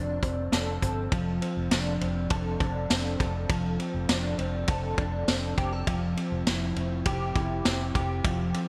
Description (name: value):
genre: dream pop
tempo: 101 BPM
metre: 4/4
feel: straight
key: F major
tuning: A4 = 440 Hz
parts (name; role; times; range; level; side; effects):
- electric guitar at the edge of break-up; arpeggios; 0.0-8.7 s; F3 to A4; -32 LUFS; equal; analog chorus, delay, shimmer reverb
- vintage muted fingered electric bass; bass; 0.0-8.5 s; F1 to G1; -34 LUFS; equal; none
- vintage drum kit; drums; 0.2-8.7 s; hi-hat, kick drum, ride cymbal, snare drum, tambourine; -32 LUFS; equal; none
room: moderate lush hall reverb, RT60 2.4 s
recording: bright 1980s-style digital production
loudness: -28 LUFS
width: mono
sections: 0.0-1.1 A section; 1.1-8.7 B section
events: none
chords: 0.0 F6; 5.9 C/F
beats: 0.53 | 1.12 1.72 2.31 2.90 | 3.50 4.09 4.68 5.28 | 5.87 6.47 7.06 7.66 | 8.25